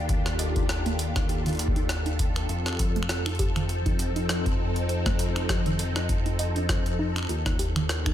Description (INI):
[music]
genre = IDM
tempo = 100 BPM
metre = 4/4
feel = swing 56% on 16ths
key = unclear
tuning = A4 = 440 Hz
[part]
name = soft string machine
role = sustained chords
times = 0.0-8.1 s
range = Eb3 to A4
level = -32 LUFS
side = left 1 dB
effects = phaser, ensemble chorus
[part]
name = warbly dusty pluck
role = arpeggios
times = 0.0-8.1 s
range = Eb3 to Eb5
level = -34 LUFS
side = right 3 dB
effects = chorus, digital delay
[part]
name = dark detuned saw bass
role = bass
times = 0.0-8.1 s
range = Eb2 to F2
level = -29 LUFS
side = equal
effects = none
[part]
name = electronic kick drum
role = drums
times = 0.1-8.1 s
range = none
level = -28 LUFS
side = equal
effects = none
[part]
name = jungle sampler-style drum kit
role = drums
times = 0.1-8.1 s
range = finger snaps, hi-hat, rim click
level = -32 LUFS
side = equal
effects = digital delay
[sound]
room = little or no reverb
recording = none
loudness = -24 LUFS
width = side -11 dB against mid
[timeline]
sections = 0.0-8.1 A section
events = filter sweep on synth arpeggio sound 0.0-8.1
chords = 0.0 Ebmaj9#11; 2.5 F7; 7.3 Ebmaj7(b5, no3)